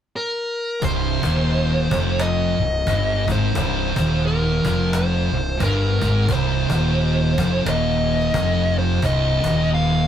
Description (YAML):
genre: stoner and doom metal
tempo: 88 BPM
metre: 4/4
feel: swing 60% on 8ths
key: C minor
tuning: A4 = 443 Hz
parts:
  - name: fuzz lead guitar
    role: melody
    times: 0.2-10.1 s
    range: Bb4 to F5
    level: -24 LUFS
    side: left 1 dB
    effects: distortion
  - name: thick fuzz guitar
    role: riff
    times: 0.8-10.1 s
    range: C2 to Ab2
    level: -22 LUFS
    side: left 4 dB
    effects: distortion
  - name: thick fuzz guitar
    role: riff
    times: 0.8-10.1 s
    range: C2 to Ab2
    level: -24 LUFS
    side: right 7 dB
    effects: distortion
  - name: fuzz fingered electric bass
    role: bass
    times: 0.8-10.1 s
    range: C1 to Ab1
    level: -24 LUFS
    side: equal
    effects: overdrive
  - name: cajon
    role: drums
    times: 0.8-9.6 s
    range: none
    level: -28 LUFS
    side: left 1 dB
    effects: none
room: moderate large studio reverb, RT60 0.9 s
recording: band playing live in one room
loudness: -18 LUFS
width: side -9 dB against mid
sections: 0.8-10.1 A section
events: none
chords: 0.0 N.C.; 0.8 Cm